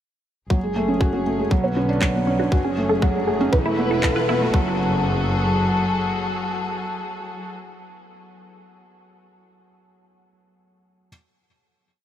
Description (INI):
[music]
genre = piano and strings electronica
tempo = 119 BPM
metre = 4/4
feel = straight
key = F# minor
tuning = A4 = 440 Hz
[part]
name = warm chamber string section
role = sustained chords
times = 0.5-7.5 s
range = D3 to B4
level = -26 LUFS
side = left 2 dB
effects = sidechain pumping
[part]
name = wide unison pluck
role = arpeggios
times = 0.5-4.8 s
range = E4 to C#5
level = -28 LUFS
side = right 1 dB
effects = none
[part]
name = felt-muted upright piano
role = riff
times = 0.5-11.1 s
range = E3 to A4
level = -22 LUFS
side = right 1 dB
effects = tape echo
[part]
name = clear symphonic double bass section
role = bass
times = 0.5-6.0 s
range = E1 to B1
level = -27 LUFS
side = left 1 dB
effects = sidechain pumping
[part]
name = electronic kick drum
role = drums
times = 0.5-4.6 s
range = none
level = -20 LUFS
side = equal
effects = overdrive, small room ambience
[part]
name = riser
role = sound effects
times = 2.6-4.5 s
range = none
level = -35 LUFS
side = equal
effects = none
[part]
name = electronic handclaps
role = drums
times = 2.0-4.1 s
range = none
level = -31 LUFS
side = equal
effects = high-pass filter on snare, small room ambience
[sound]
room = moderate huge ambient reverb, RT60 6.9 s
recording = none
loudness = -19 LUFS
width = side -10 dB against mid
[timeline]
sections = 0.5-4.5 build; 4.5-8.6 final chord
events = build-up 0.5-4.5; filter sweep on synth arpeggio sound 0.5-4.5; riser 2.6-4.5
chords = 0.5 F#madd9; 1.5 Bmadd9; 2.5 F#madd9; 3.5 Esus4; 4.5 F#madd9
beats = | 0.51 1.01 1.52 2.02 | 2.52 3.03 3.53 4.04 | 4.54 5.04 5.55 6.05 | 6.56 7.06 7.57 8.07